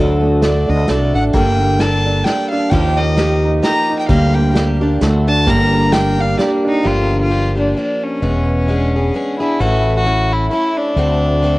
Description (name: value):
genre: acoustic folk duo or small band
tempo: 131 BPM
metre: 3/4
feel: swing 57% on 8ths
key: G minor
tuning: A4 = 436 Hz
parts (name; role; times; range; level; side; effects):
- picked plugged-in steel-string acoustic guitar; accompaniment; 0.0-11.6 s; G2 to Bb4; -20 LUFS; left 1 dB; cassette tape
- felt-muted upright piano; arpeggios; 0.0-6.9 s; F3 to A4; -18 LUFS; right 2 dB; cassette tape
- fretless electric bass; bass; 0.0-11.6 s; E1 to Eb2; -16 LUFS; equal; none
- rich violin; melody; 0.4-11.6 s; C#4 to Bb5; -19 LUFS; equal; cassette tape, tape echo
- unplugged drum kit; drums; 0.4-6.5 s; hi-hat, kick drum, snare drum; -19 LUFS; equal; cassette tape
room: light reverb, small room ambience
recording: home recording on cassette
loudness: -13 LUFS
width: side -19 dB against mid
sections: 0.0-6.8 A section; 6.8-11.6 B section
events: violin solo 0.0-6.8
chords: 0.0 D; 1.3 Gmadd9; 2.7 Ebadd9; 4.1 Gm/D; 5.0 D; 5.5 Gm; 6.8 Gm7; 8.2 E7; 9.6 A; 11.0 D7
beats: 0.42 0.88 | 1.34 1.80 2.26 | 2.71 3.17 3.63 | 4.09 4.55 5.01 | 5.47 5.93 6.38 | 6.84 7.30 7.76 | 8.22 8.68 9.14 | 9.60 10.05 10.51 | 10.97 11.43